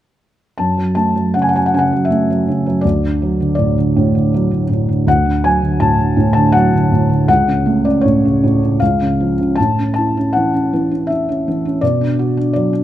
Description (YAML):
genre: classical, lyrical solo piano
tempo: 81 BPM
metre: 3/4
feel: rubato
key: unclear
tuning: A4 = 440 Hz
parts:
  - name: felt-muted upright piano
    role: solo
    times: 0.6-12.8 s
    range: C#2 to A5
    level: -12 LUFS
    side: equal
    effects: none
room: light reverb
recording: close, detailed microphones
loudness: -13 LUFS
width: side -12 dB against mid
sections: 0.6-12.8 A section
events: none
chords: 0.6 F#m; 2.8 D; 7.3 Dmaj7/C#; 8.8 C#; 9.6 A; 11.8 Bm